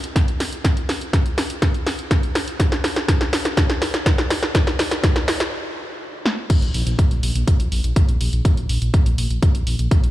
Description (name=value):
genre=melodic techno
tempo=123 BPM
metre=4/4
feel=straight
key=unclear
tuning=A4 = 440 Hz
part: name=punchy analog drum machine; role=drums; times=0.0-10.1 s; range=crash cymbal, hi-hat, snare drum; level=-22 LUFS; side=equal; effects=sidechain pumping on hats, sidechain pumping on cymbals
part: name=electronic kick drum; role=drums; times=0.2-10.0 s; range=none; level=-17 LUFS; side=equal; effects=none
part: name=dark detuned saw bass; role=bass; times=6.6-10.1 s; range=Bb1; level=-20 LUFS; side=equal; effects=sidechain pumping
room=light reverb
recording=played on a big sound system in a bare room, large studio reverb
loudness=-17 LUFS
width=side -15 dB against mid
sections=0.0-6.5 A section; 6.5-10.1 B section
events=build-up 0.0-6.5; drum fill 0.0-5.5, 6.3; stop 5.5-6.5; drop 6.5-10.1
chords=none